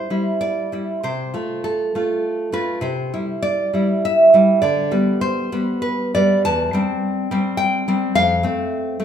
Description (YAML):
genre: romantic piece for solo classical guitar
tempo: 91-107 BPM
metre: 3/4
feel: rubato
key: C major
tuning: A4 = 438 Hz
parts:
  - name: nylon-string guitar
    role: solo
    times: 0.0-9.0 s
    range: E2 to A5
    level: -17 LUFS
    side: equal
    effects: none
room: moderate recital hall reverb, RT60 1.6 s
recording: minimal, uncompressed stereo recording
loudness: -17 LUFS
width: side -8 dB against mid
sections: 0.0-9.0 A section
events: none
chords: 0.0 C; 1.0 F/C; 2.8 C; 4.6 G/D; 6.5 C/E; 8.2 F